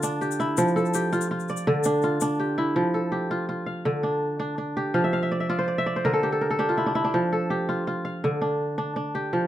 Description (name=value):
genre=west african traditional, West African string and xylophone music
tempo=110 BPM (dotted quarters)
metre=12/8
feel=straight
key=unclear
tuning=A4 = 440 Hz
part: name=kora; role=arpeggios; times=0.0-9.5 s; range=D3 to F5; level=-23 LUFS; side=equal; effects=none
part: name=tube shaker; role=percussion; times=0.0-2.3 s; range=none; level=-35 LUFS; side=left 11 dB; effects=none
room=moderate small room reverb, RT60 0.5 s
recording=dark, warm production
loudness=-23 LUFS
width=side -12 dB against mid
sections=0.0-2.8 A section; 2.8-9.5 B section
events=kora fill 4.9-7.1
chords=0.0 Dm; 0.6 F; 1.7 Dm; 2.8 F; 3.9 Dm; 4.9 Dm11/F; 6.0 N.C.; 7.1 F; 8.2 Dm